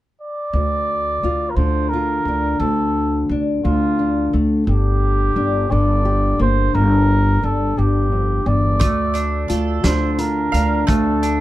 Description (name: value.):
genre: acoustic folk duo or small band.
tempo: 58 BPM (dotted quarters).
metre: 6/8.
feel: straight.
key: D minor.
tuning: A4 = 439 Hz.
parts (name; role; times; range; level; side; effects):
trumpet with cup mute; melody; 0.2-11.4 s; F4 to D5; -22 LUFS; right 1 dB; none.
upright bass; bass; 0.5-11.4 s; G1 to D2; -19 LUFS; equal; none.
nylon-string guitar; accompaniment; 0.6-11.4 s; D2 to G4; -22 LUFS; left 3 dB; none.
mandolin; arpeggios; 8.8-11.4 s; A3 to F5; -26 LUFS; right 5 dB; none.
loose indie drum kit; drums; 8.8-11.4 s; hi-hat, kick drum, snare drum; -21 LUFS; equal; none.
room: light reverb.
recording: dark, warm production.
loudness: -16 LUFS.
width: side -15 dB against mid.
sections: 0.5-11.4 A section.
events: none.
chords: 0.0 N.C.; 0.5 Dm; 4.7 G5; 8.8 Dm.